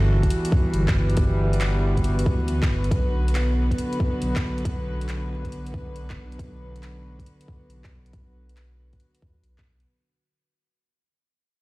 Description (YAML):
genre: future garage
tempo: 138 BPM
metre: 4/4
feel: swing 67% on 16ths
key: B minor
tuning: A4 = 440 Hz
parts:
  - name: warm studio string section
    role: sustained chords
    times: 0.0-9.9 s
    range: D3 to B4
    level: -28 LUFS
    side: equal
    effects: vintage 12-bit sampler grit, sidechain pumping
  - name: dark detuned saw bass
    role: bass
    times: 0.0-9.9 s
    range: F#1 to E2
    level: -24 LUFS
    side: equal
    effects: sidechain pumping
  - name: electronic kick drum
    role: drums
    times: 0.2-9.6 s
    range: none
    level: -23 LUFS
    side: equal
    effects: small room ambience
  - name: garage drum kit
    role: drums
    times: 0.2-9.9 s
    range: handclaps, hi-hat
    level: -35 LUFS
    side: equal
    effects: small room ambience
room: digital ambience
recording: played on a big sound system in a bare room, stone room reverb, vinyl crackle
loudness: -21 LUFS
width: side -21 dB against mid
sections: 0.0-9.9 A section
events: fade-out 0.0-9.9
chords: 0.0 Emadd9/G; 2.9 Bm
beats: 0.30 0.74 | 1.17 1.60 2.04 2.48 | 2.91 3.34 3.78 4.21 | 4.65 5.08 5.52 5.95 | 6.39 6.82 7.26 7.69 | 8.13 8.56 9.00 9.43